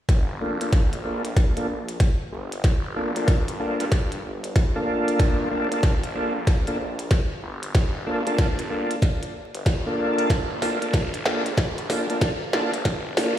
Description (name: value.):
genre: glitch hop.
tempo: 94 BPM.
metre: 4/4.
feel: swing 63% on 16ths.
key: G minor.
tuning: A4 = 438 Hz.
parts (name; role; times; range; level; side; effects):
phased detuned saw bass; bass; 0.1-13.4 s; F1 to G2; -33 LUFS; equal; phaser, overdrive, high-pass filter.
electronic kick drum; drums; 0.1-13.0 s; none; -20 LUFS; equal; overdrive.
glitchy drum kit; drums; 0.1-13.3 s; hi-hat, snare drum; -29 LUFS; equal; none.
tonewheel organ; stabs; 0.4-13.3 s; Bb3 to A4; -26 LUFS; equal; chorus vibrato, slow rotary speaker, vintage 12-bit sampler grit, sidechain pumping, low-pass filter, ping-pong delay.
room: moderate lush hall reverb, RT60 2.2 s.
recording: played on a big sound system in a bare room, stone room reverb, vinyl crackle, high-pass filter.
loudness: -21 LUFS.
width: side -11 dB against mid.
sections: 0.1-13.4 A section.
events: build-up 0.1-13.4; drum fill 0.1-13.4; filter sweep on tonewheel organ 0.1-13.4; filter sweep 0.1-13.4.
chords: 0.1 Gm7.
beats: | 0.09 0.73 1.37 2.00 | 2.64 3.28 3.92 4.56 | 5.20 5.83 6.47 7.11 | 7.75 8.39 9.03 9.66 | 10.30 10.94 11.58 12.22 | 12.86.